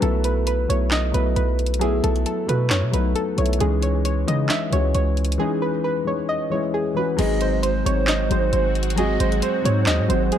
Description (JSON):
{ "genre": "hip hop, trap", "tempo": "134 BPM", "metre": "4/4", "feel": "half-time", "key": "unclear", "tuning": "A4 = 439 Hz", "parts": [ { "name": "soft round pluck", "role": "melody", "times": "0.0-10.4 s", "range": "G#4 to E5", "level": "-24 LUFS", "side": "right 1 dB", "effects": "chorus, digital delay" }, { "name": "dark concert grand piano", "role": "accompaniment", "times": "0.0-10.4 s", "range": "E3 to F#4", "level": "-25 LUFS", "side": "left 5 dB", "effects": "none" }, { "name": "hard-hitting 808-style bass", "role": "bass", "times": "0.0-10.3 s", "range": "G#1 to C#3", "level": "-22 LUFS", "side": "right 1 dB", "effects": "none" }, { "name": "trap drum kit", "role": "drums", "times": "0.0-10.4 s", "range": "crash cymbal, handclaps, hi-hat, snare drum", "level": "-26 LUFS", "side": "right 1 dB", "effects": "none" }, { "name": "reedy pan flute", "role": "second line", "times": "7.2-10.4 s", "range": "B#4 to D#5", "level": "-27 LUFS", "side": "right 6 dB", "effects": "digital delay" }, { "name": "sweeping resonant pad", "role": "sustained chords", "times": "7.2-10.4 s", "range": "F#3 to F#4", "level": "-29 LUFS", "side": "right 2 dB", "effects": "chorus" } ], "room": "light reverb", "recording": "dark, warm production", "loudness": "-19 LUFS", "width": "side -10 dB against mid", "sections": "0.0-7.2 A section; 7.2-10.4 B section", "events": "break 5.4-7.2", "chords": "0.0 B7sus4; 3.6 C#madd9; 7.2 G#7", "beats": "| 0.02 0.47 0.92 1.37 | 1.81 2.26 2.71 3.16 | 3.60 4.05 4.50 4.95 | 5.40 5.84 6.29 6.74 | 7.19 7.63 8.08 8.53 | 8.98 9.43 9.87 10.32" }